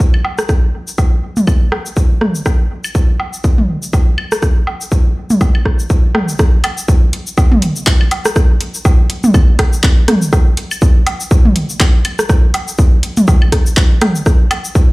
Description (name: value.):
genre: techno.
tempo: 122 BPM.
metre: 4/4.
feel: swing 57% on 16ths.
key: none.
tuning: none.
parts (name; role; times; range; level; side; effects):
booming analog drum machine; drums; 0.0-14.9 s; cabasa, handclaps, hi-hat; -21 LUFS; left 1 dB; overdrive.
electronic kick drum; drums; 0.0-14.9 s; none; -11 LUFS; equal; overdrive.
organic electronic drum kit; percussion; 0.1-14.6 s; rim click, toms, woodblock; -16 LUFS; equal; dub echo.
room: light reverb.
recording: played on a big sound system in a bare room, stone room reverb.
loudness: -10 LUFS.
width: side -23 dB against mid.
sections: 0.0-6.4 A section; 6.4-14.9 B section.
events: drop 6.4-14.9.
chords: none.